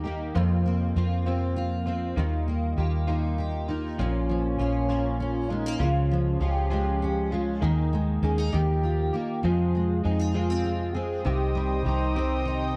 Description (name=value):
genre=six-eight pop ballad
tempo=66 BPM (dotted quarters)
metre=6/8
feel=straight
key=unclear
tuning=A4 = 440 Hz
part: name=fingerpicked steel-string acoustic guitar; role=accompaniment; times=0.0-12.8 s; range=F2 to G4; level=-31 LUFS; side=equal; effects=double-tracked
part: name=direct-recorded clean electric guitar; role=arpeggios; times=0.0-12.8 s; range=F2 to Ab4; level=-36 LUFS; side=equal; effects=analog chorus
part: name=vintage muted fingered electric bass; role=bass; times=0.0-12.8 s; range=Bb1 to F2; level=-30 LUFS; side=equal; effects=none
part: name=dark French horn section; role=second line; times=4.0-12.4 s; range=Db4 to Ab4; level=-33 LUFS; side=equal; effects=none
part: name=warm studio string section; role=sustained chords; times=11.2-12.8 s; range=C5 to Eb6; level=-34 LUFS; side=equal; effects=none
room=small room ambience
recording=dry, close 1970s-style studio recording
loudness=-26 LUFS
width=mono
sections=0.0-12.8 A section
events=none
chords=0.4 Bbsus2/F; 2.2 Ebadd9; 4.0 Bbm; 5.8 Db; 7.6 Ebsus4; 8.5 Ebadd9; 9.4 Fm; 11.2 Cm